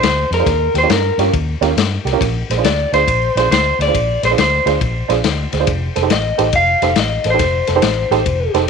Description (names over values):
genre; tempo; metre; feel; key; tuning
electric blues shuffle; 138 BPM; 4/4; swing 66% on 8ths; Bb major; A4 = 437 Hz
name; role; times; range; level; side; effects
electric guitar through a small old amp; melody; 0.0-8.5 s; Bb4 to F5; -17 LUFS; left 1 dB; tape echo
vintage muted fingered electric bass; bass; 0.0-8.7 s; F1 to G2; -20 LUFS; left 1 dB; none
crunchy breakbeat drum kit; drums; 0.0-8.6 s; kick drum, ride cymbal, snare drum; -20 LUFS; left 8 dB; none
honky-tonk upright piano; accompaniment; 0.3-8.6 s; Db4 to C5; -19 LUFS; right 14 dB; none
room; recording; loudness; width
light reverb, studio reverb; 1960s-style stereo with parts hard left and right; -13 LUFS; side -5 dB against mid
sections
0.0-8.7 A section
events
none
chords
0.5 Eb9; 2.2 Bb9; 5.7 F9